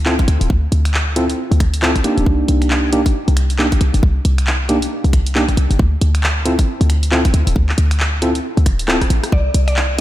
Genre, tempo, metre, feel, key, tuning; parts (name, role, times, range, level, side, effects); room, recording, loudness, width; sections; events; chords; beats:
UK garage, two-step garage; 136 BPM; 4/4; swing 60% on 16ths; C dorian; A4 = 439 Hz
short 808-style bass; bass; 0.0-10.0 s; D1 to D2; -16 LUFS; equal
tine electric piano; stabs; 0.1-10.0 s; Bb3 to A4; -19 LUFS; equal; overdrive, ping-pong delay
punchy analog drum machine; drums; 0.1-10.0 s; finger snaps, handclaps, hi-hat, rim click; -22 LUFS; equal; studio reverb
electronic kick drum; drums; 0.2-9.4 s; -16 LUFS; equal; overdrive, studio reverb
mallet-like synth pluck; melody; 9.3-10.0 s; D5; -22 LUFS; left 1 dB; chorus, ping-pong delay
light reverb; -13 LUFS; side -14 dB against mid
0.0-10.0 A section
drum fill 8.9-9.3
0.0 N.C.; 2.3 Cm9; 5.8 N.C.; 9.3 Csus2
0.06 | 0.50 0.94 1.38 1.82 | 2.27 2.71 3.15 3.59 | 4.03 4.47 4.91 5.35 | 5.79 6.24 6.68 7.12 | 7.56 8.00 8.44 8.88 | 9.32 9.77